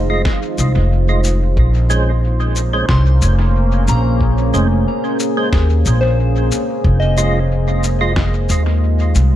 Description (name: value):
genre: ambient dub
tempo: 91 BPM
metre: 4/4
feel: swing 53% on 16ths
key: Bb minor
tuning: A4 = 440 Hz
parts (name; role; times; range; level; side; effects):
- deep dark ambient pad; sustained chords; 0.0-9.4 s; Ab3 to C5; -21 LUFS; right 1 dB; chorus, built-in reverb
- soft synth bell; arpeggios; 0.0-9.4 s; C5 to C6; -27 LUFS; left 2 dB; chorus, tape echo
- upright bass; bass; 0.0-9.4 s; F1 to Eb2; -14 LUFS; equal; none
- percussive tonewheel organ; stabs; 0.1-8.1 s; Ab3 to Eb5; -24 LUFS; right 2 dB; chorus vibrato, slow rotary speaker, dub echo
- electronic kick drum; drums; 0.3-8.3 s; none; -18 LUFS; equal; none
- electronic snare drum and shaker; drums; 0.3-9.3 s; none; -26 LUFS; left 1 dB; dub echo
room: digital ambience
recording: echo-heavy mix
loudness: -13 LUFS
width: side -12 dB against mid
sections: 0.0-9.4 A section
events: none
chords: 0.0 Fm7; 1.6 Bbm9; 6.8 Fm7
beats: 0.25 0.91 | 1.57 2.23 2.89 3.55 | 4.21 4.87 5.53 6.19 | 6.84 7.50 8.16 8.82